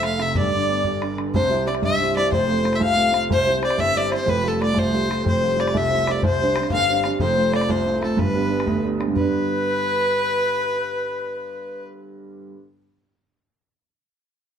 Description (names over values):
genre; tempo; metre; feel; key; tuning
celtic folk, Celtic jig; 123 BPM (dotted quarters); 6/8; straight; G mixolydian; A4 = 440 Hz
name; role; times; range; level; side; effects
warm fiddle; melody; 0.0-11.8 s; A4 to F5; -24 LUFS; equal; none
mellow hollow baroque flute; second line; 0.0-11.8 s; A4 to F5; -24 LUFS; left 5 dB; none
warm concert grand piano; accompaniment; 0.0-12.6 s; F1 to G4; -23 LUFS; right 3 dB; none
bodhran; percussion; 0.0-9.3 s; none; -28 LUFS; left 2 dB; none
room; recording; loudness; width
wet stone room reverb, RT60 1.0 s; band playing live in one room; -18 LUFS; side -8 dB against mid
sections
0.0-1.3 A section; 1.3-9.1 B section; 9.1-11.1 C section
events
none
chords
0.3 G; 1.3 C; 2.3 F; 3.3 C; 4.3 Fadd9; 5.3 Fsus2; 6.2 Csus2; 7.2 F; 8.2 G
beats
| 0.35 0.84 | 1.34 1.83 | 2.32 2.81 | 3.30 3.79 | 4.28 4.77 | 5.25 5.74 | 6.23 6.72 | 7.20 7.69 | 8.17 8.66 | 9.14 9.63 | 10.11 10.59